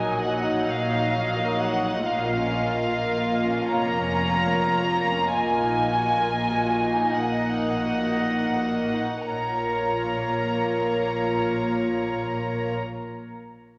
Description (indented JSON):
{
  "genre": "classical, slow romantic movement for symphony orchestra",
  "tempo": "26-43 BPM (dotted quarters)",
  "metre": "6/8",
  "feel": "rubato",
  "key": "Bb minor",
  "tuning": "A4 = 442 Hz",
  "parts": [
    { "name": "dark chamber violin section", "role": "melody", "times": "0.0-12.8 s", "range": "F5 to Bb5", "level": "-29 LUFS", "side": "equal", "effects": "none" },
    { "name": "warm studio violin section", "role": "second line", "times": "0.0-12.7 s", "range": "Bb3 to Eb5", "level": "-31 LUFS", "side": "equal", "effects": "none" },
    { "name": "rich studio viola section", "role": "accompaniment", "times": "0.0-12.8 s", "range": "Gb3 to F4", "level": "-31 LUFS", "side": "equal", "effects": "none" },
    { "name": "dark studio cello section", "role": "bass", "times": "0.0-12.7 s", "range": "F2 to Bb2", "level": "-33 LUFS", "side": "equal", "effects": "none" },
    { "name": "dark studio double bass section", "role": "bass", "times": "0.0-12.8 s", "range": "F1 to Bb1", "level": "-36 LUFS", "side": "equal", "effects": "none" }
  ],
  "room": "wet scoring stage reverb, RT60 2.1 s",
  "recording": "none",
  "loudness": "-24 LUFS",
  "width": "mono",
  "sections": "0.0-9.3 A section; 9.3-13.3 B section",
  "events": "slowing down 0.7-9.3",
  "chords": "0.0 Ebm/Bb; 2.1 Bbm; 5.3 Ebm/Bb; 9.3 Bbm"
}